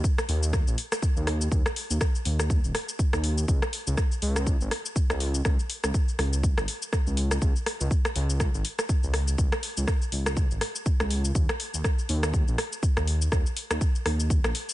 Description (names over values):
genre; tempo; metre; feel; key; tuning
afro house; 122 BPM; 4/4; swing 57% on 16ths; unclear; A4 = 436 Hz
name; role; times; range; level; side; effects
afro-pop drum kit; drums; 0.0-14.7 s; hi-hat, rim click, shaker; -30 LUFS; left 1 dB; none
electronic kick drum; drums; 0.0-14.4 s; none; -25 LUFS; equal; none
dark detuned saw bass; bass; 0.3-14.5 s; Eb1 to Eb2; -27 LUFS; equal; sidechain pumping
room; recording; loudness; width
little or no reverb; nothing above 10.7 kHz; -24 LUFS; side -16 dB against mid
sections
0.0-14.7 A section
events
none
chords
none